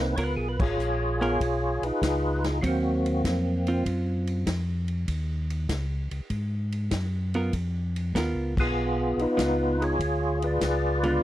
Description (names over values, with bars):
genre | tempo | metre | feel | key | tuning
soul jazz organ trio | 98 BPM | 4/4 | swing 69% on 8ths | unclear | A4 = 439 Hz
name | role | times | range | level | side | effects
percussive tonewheel organ | melody | 0.0-3.8, 8.6-11.2 s | Bb3 to D5 | -26 LUFS | equal | slow rotary speaker, chorus vibrato
mellow tonewheel organ | bass | 0.0-11.2 s | Ab1 to Ab2 | -28 LUFS | equal | chorus vibrato, slow rotary speaker
hollow-body jazz guitar | accompaniment | 0.2-11.2 s | D3 to Bb4 | -29 LUFS | right 2 dB | none
vintage drum kit | drums | 0.2-11.1 s | crash cymbal, hi-hat, kick drum, ride cymbal, snare drum | -33 LUFS | left 1 dB | none
room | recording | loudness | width
little or no reverb | dry, close 1970s-style studio recording | -24 LUFS | side -14 dB against mid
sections
0.0-11.2 A section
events
band accent 0.5-0.8, 8.5-8.8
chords
0.2 Db13; 2.6 Ebm69; 5.1 Dbsus2; 6.3 Absus2; 7.5 Db13; 10.0 Ddim7